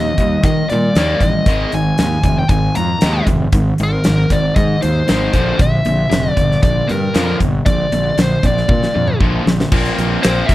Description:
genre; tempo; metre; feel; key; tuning
classic rock; 116 BPM; 4/4; straight; unclear; A4 = 440 Hz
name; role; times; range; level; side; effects
nasal lead guitar with a parked wah; melody; 0.0-10.5 s; Bb4 to Bb5; -19 LUFS; left 2 dB; overdrive, slapback echo
cranked stack guitar; riff; 0.0-10.5 s; Ab2 to C4; -18 LUFS; equal; overdrive
fuzz fingered electric bass; bass; 0.0-10.5 s; F1 to Eb3; -19 LUFS; equal; overdrive
huge arena drum kit; drums; 0.2-10.5 s; crash cymbal, hi-hat, kick drum, snare drum, toms; -17 LUFS; equal; none
room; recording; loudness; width
studio reverb; dry, close 1970s-style studio recording; -12 LUFS; side -15 dB against mid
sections
0.0-9.7 A section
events
drum fill 8.7-9.7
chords
0.0 Eb; 1.5 Absus2; 5.3 Bb; 9.7 Bbsus2

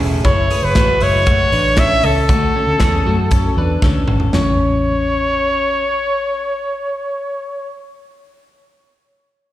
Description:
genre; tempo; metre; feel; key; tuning
jangly indie pop; 117 BPM; 4/4; straight; A major; A4 = 442 Hz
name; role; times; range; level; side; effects
twelve-string electric guitar; arpeggios; 0.0-5.8 s; G#3 to B4; -21 LUFS; left 3 dB; spring reverb, slapback echo
vintage muted fingered electric bass; bass; 0.0-7.7 s; E1 to F#2; -19 LUFS; equal; none
clear trumpet; melody; 0.2-7.7 s; A4 to E5; -17 LUFS; equal; slapback echo, analog delay
modern studio drum kit; drums; 0.2-4.5 s; hi-hat, kick drum, snare drum, toms; -18 LUFS; equal; none
room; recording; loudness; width
light reverb, small room ambience; live gig heard through the venue's PA, recital hall reverb; -13 LUFS; side -14 dB against mid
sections
0.0-4.3 A section; 4.3-8.4 B section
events
drum fill 3.8-4.3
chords
0.2 F#m7; 2.3 Dmaj7; 4.3 A

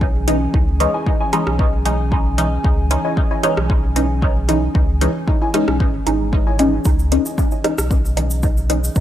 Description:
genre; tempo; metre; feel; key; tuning
dub techno; 114 BPM; 4/4; straight; C# minor; A4 = 440 Hz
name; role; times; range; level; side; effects
dark analog pad; sustained chords; 0.0-9.0 s; E3 to G#5; -27 LUFS; equal; chorus, sidechain pumping
warm sub bass; bass; 0.0-9.0 s; G#1 to C#2; -20 LUFS; equal; tube saturation, sidechain pumping
electronic kick drum; drums; 0.0-9.0 s; none; -18 LUFS; equal; overdrive
filtered dub chord stab; stabs; 0.3-8.8 s; E3 to D#4; -20 LUFS; equal; phaser, sidechain pumping, dub echo
deep house drum kit; drums; 0.3-8.8 s; hi-hat, rim click; -25 LUFS; equal; overdrive
filtered dub chord stab; riff; 0.9-7.7 s; E4 to G#5; -27 LUFS; left 2 dB; phaser, vintage 12-bit sampler grit, sidechain pumping, dub echo
cabasa; percussion; 6.8-9.0 s; none; -30 LUFS; equal; none
room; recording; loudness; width
light reverb; none; -15 LUFS; side -12 dB against mid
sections
0.0-9.0 A section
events
none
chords
0.0 C#madd9

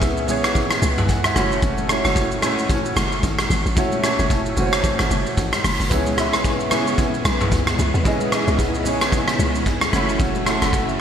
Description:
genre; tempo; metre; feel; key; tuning
amapiano; 112 BPM; 4/4; swing 58% on 16ths; C# minor; A4 = 440 Hz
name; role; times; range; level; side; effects
warm concert grand piano; accompaniment; 0.0-11.0 s; A3 to G#5; -23 LUFS; right 1 dB; analog chorus
hollow log drum bass; bass; 0.0-11.0 s; F#1 to E2; -24 LUFS; equal; none
raw garage drum kit; drums; 0.0-11.0 s; hi-hat, kick drum, rim click, shaker, toms; -20 LUFS; equal; gated reverb
congas; percussion; 0.3-10.7 s; none; -31 LUFS; left 3 dB; none
string machine, violins; sustained chords; 5.9-11.0 s; C#3 to E4; -27 LUFS; equal; ensemble chorus
room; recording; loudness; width
moderate lush hall reverb, RT60 1.9 s; bright 1980s-style digital production; -17 LUFS; side -8 dB against mid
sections
0.0-11.0 A section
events
none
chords
0.0 C#m7; 1.4 F#m7; 5.9 C#m7; 9.9 F#m7

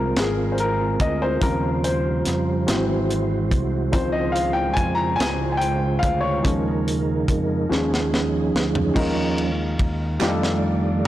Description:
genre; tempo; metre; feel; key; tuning
slow gospel; 48 BPM (dotted quarters); 6/8; straight; unclear; A4 = 440 Hz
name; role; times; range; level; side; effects
warm upright piano; accompaniment; 0.0-11.1 s; Db3 to Bb5; -24 LUFS; left 3 dB; none
mellow tonewheel organ; sustained chords; 0.0-11.1 s; Db3 to D5; -24 LUFS; right 4 dB; slow rotary speaker, chorus vibrato
fingered electric bass; bass; 0.0-11.1 s; Ab1 to F2; -26 LUFS; equal; tube saturation
tight funk drum kit; drums; 0.2-11.1 s; crash cymbal, hi-hat, kick drum, ride cymbal, snare drum, toms; -25 LUFS; equal; none
group handclap; percussion; 10.2-10.6 s; none; -32 LUFS; right 8 dB; none
room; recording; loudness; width
light reverb, studio reverb; blown-out, overdriven recording, overdrive; -19 LUFS; side -14 dB against mid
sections
0.0-9.0 A section; 9.0-11.1 B section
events
upright piano solo 0.0-9.0; drum fill 7.7-9.0, 10.2-11.1; tonewheel organ solo 9.0-11.1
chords
0.0 Ab69; 1.4 Eb13; 2.7 Abaug7; 3.9 Dbmaj7; 6.4 Eb7sus4; 7.7 Eb9sus4; 10.2 F13

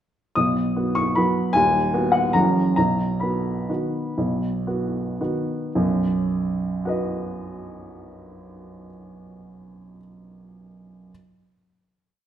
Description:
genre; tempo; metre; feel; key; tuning
classical, piano waltz; 104-160 BPM; 3/4; rubato; B major; A4 = 436 Hz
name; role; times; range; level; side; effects
warm upright piano; solo; 0.4-11.1 s; D#1 to D#6; -21 LUFS; equal; none
room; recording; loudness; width
moderate recital hall reverb, RT60 1.4 s; none; -20 LUFS; side -10 dB against mid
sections
0.4-5.8 A section; 5.8-9.0 final chord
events
slowing down 2.1-5.8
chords
0.4 B; 1.6 B/D#; 2.3 F#7; 2.8 B

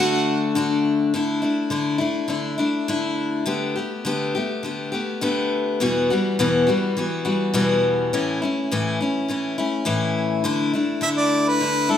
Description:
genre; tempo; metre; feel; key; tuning
acoustic folk duo or small band; 103 BPM; 4/4; straight; D major; A4 = 438 Hz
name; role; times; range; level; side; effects
clear harmonica; melody; 0.0-0.6, 11.0-12.0 s; A4 to F#5; -22 LUFS; right 2 dB; none
pedal steel guitar; second line; 0.0-0.8 s; F#4; -34 LUFS; right 8 dB; none
picked steel-string acoustic guitar; accompaniment; 0.0-12.0 s; E2 to G4; -20 LUFS; left 2 dB; none
room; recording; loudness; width
moderate recital hall reverb, RT60 1.7 s; minimal, uncompressed stereo recording; -20 LUFS; side -9 dB against mid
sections
0.0-1.1 A section; 1.1-10.4 B section; 10.4-12.0 C section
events
harmonica solo 10.4-12.0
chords
0.0 D; 1.1 Dsus2; 3.5 Gadd9/D; 5.8 Emadd9; 8.1 A; 10.4 Dsus2

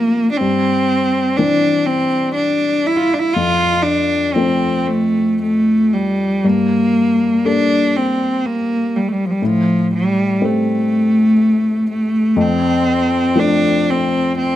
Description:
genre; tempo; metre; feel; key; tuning
celtic folk; 60 BPM; 3/4; rubato; unclear; A4 = 439 Hz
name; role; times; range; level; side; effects
rich cello; melody; 0.0-14.6 s; F3 to F4; -14 LUFS; equal; none
dark upright piano; accompaniment; 0.0-14.6 s; F2 to A4; -20 LUFS; left 2 dB; none
room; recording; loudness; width
moderate recital hall reverb, RT60 1.6 s; close, detailed microphones; -13 LUFS; side -12 dB against mid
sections
0.0-14.6 A section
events
none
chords
0.4 Cadd9/G; 3.4 F; 6.4 Gmadd9; 9.4 Am7; 12.4 F

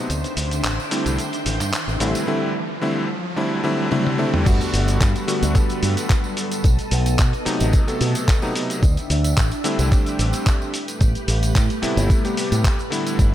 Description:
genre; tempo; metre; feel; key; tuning
nu-disco, nu disco; 110 BPM; 4/4; swing 53% on 16ths; unclear; A4 = 439 Hz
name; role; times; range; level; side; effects
bright electric grand piano; accompaniment; 0.0-13.3 s; C3 to A4; -24 LUFS; left 1 dB; sidechain pumping, digital delay
string machine, full ensemble; sustained chords; 0.0-13.3 s; G3 to G5; -28 LUFS; right 1 dB; ensemble chorus, sidechain pumping
riser; sound effects; 0.2-4.5 s; none; -30 LUFS; right 2 dB; none
fingered electric bass with an envelope filter; bass; 0.1-13.3 s; G1 to B2; -21 LUFS; equal; tube saturation
dusty soul sampler-style drum kit; drums; 0.1-13.3 s; crash cymbal, handclaps, hi-hat, shaker, toms; -27 LUFS; equal; none
tambourine; percussion; 0.1-13.3 s; none; -35 LUFS; right 4 dB; none
electronic kick drum; drums; 4.5-13.3 s; none; -17 LUFS; equal; none
room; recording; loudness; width
little or no reverb; none; -18 LUFS; side -12 dB against mid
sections
0.0-4.5 A section; 4.5-13.3 B section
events
build-up 0.0-4.5; riser 0.2-4.5; drum fill 3.9-4.5; drop 4.5-13.3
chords
0.1 D9sus4; 2.0 Am9; 4.5 Gmaj9; 6.6 B7b9; 8.8 D9sus4; 10.7 Am9

